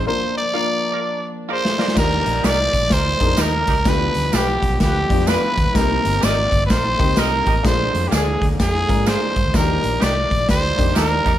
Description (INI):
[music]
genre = uptempo 1960s-style soul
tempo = 127 BPM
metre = 4/4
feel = swing 63% on 8ths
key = Eb major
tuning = A4 = 440 Hz
[part]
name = growling trumpet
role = melody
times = 0.0-11.4 s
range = G4 to D5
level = -20 LUFS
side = right 1 dB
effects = slapback echo
[part]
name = clear brass ensemble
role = sustained chords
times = 0.0-11.4 s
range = D3 to D5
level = -31 LUFS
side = right 1 dB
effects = none
[part]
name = vintage muted fingered electric bass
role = bass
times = 0.0-11.4 s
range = G1 to Ab2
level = -23 LUFS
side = equal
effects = none
[part]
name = warm upright piano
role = accompaniment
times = 0.1-11.2 s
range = Bb3 to F5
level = -26 LUFS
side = left 4 dB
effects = none
[part]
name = electric guitar through a small old amp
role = stabs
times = 0.5-11.3 s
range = Eb4 to Eb5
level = -29 LUFS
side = right 6 dB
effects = none
[part]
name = raw garage drum kit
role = drums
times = 1.7-11.3 s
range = crash cymbal, hi-hat, kick drum, snare drum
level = -20 LUFS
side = equal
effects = none
[part]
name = tambourine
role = percussion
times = 2.0-11.1 s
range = none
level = -33 LUFS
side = right 5 dB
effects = none
[part]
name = mellow horn section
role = second line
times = 2.4-11.3 s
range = Eb3 to B4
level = -30 LUFS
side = equal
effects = none
[sound]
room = light reverb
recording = none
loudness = -16 LUFS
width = side -12 dB against mid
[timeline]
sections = 0.0-2.0 A section; 2.0-11.4 B section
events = break 0.1-2.0; drum fill 1.0-2.0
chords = 0.1 Bb; 2.0 Ebmaj7; 3.9 G7; 5.8 Cm7; 7.7 Bb7; 9.5 Ebmaj7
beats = | 0.08 0.55 1.03 1.50 | 1.97 2.45 2.92 3.39 | 3.87 4.34 4.81 5.29 | 5.76 6.23 6.70 7.18 | 7.65 8.12 8.60 9.07 | 9.54 10.01 10.49 10.96